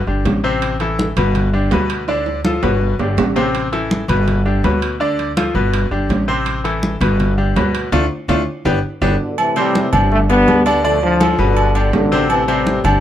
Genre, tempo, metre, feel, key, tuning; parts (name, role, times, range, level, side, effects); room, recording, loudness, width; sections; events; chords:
latin, salsa; 164 BPM; 4/4; straight; A4 = 439 Hz
upright bass; bass; 0.0-13.0 s; G1 to D2; -19 LUFS; equal
bright grand piano; accompaniment; 0.1-13.0 s; B2 to D5; -19 LUFS; left 2 dB
congas; percussion; 0.1-13.0 s; -22 LUFS; equal
timbales and agogo bells; percussion; 0.3-13.0 s; -22 LUFS; right 3 dB
warm trombone section; melody; 9.0-13.0 s; G2 to B3; -17 LUFS; equal; plate reverb
moderate studio reverb, RT60 0.6 s; -14 LUFS; side -11 dB against mid
0.0-9.4 A section; 9.4-13.0 B section
drum fill 2.1-3.5, 7.9-9.4; band accent 7.9-9.4
0.0 G5; 0.6 Am; 1.4 G; 2.1 Dm; 2.8 G; 3.5 Am; 4.3 G; 5.0 Dm; 5.7 G; 6.5 Am; 7.2 G; 7.9 Dm; 8.7 G; 9.4 Am; 10.1 G; 10.8 Dm; 11.6 G; 12.3 Am